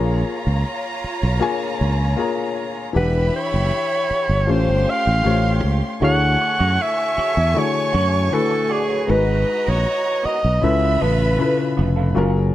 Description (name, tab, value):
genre	soul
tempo	78 BPM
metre	4/4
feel	straight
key	unclear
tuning	A4 = 441 Hz
part	warm studio violin section	second line	0.0-12.1 s	A3 to C#6	-28 LUFS	right 2 dB	none
part	dark grand piano	accompaniment	0.0-12.5 s	C#3 to A#5	-23 LUFS	left 5 dB	none
part	fingered electric bass	bass	0.0-12.5 s	E1 to F#2	-19 LUFS	right 1 dB	none
part	warm alto saxophone	melody	3.0-11.8 s	G#4 to F#5	-20 LUFS	equal	none
part	electric guitar through a small old amp	riff	6.0-12.3 s	A#3 to D5	-29 LUFS	right 7 dB	wah
room	light reverb, studio reverb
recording	dark, warm production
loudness	-17 LUFS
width	side -14 dB against mid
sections	0.0-12.5 A section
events	none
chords	0.0 A#m7; 2.9 Em7; 4.5 A7alt; 6.0 Dmaj9#11; 9.1 G#m9; 10.6 C#7alt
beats	0.64 1.41 2.18 | 2.95 3.72 4.48 5.25 | 6.02 6.79 7.56 8.32 | 9.09 9.86 10.63 11.40 | 12.17